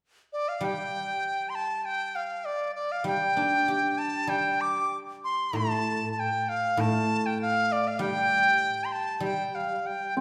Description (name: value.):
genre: chinese traditional, Chinese chamber ensemble.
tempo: 98 BPM.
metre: 2/4.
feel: rubato.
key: G shang mode.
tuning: A4 = 440 Hz.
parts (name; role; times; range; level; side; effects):
bright reedy dizi; melody; 0.3-10.2 s; D5 to D6; -29 LUFS; equal; none.
guzheng; accompaniment; 0.6-10.2 s; A2 to G4; -34 LUFS; equal; none.
hammered dulcimer; second line; 10.2 s; C4; -26 LUFS; equal; none.
room: wet recital hall reverb, RT60 1.7 s.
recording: recorded in a church or concert hall.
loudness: -28 LUFS.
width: mono.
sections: 0.6-10.2 A section.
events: none.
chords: none.